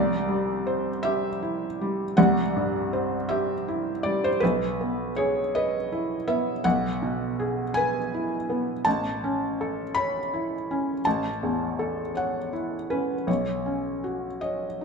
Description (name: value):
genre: classical, contemporary piece for solo felt piano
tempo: 54 BPM (dotted quarters)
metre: 6/8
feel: rubato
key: unclear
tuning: A4 = 440 Hz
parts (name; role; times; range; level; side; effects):
- felt-muted upright piano; solo; 0.0-14.8 s; A1 to B5; -24 LUFS; equal; none
room: moderate scoring stage reverb, RT60 1.6 s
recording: minimal, uncompressed stereo recording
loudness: -24 LUFS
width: side -5 dB against mid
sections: 0.0-14.8 A section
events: none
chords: 0.0 C; 4.4 E/B; 8.9 A; 13.3 Badd9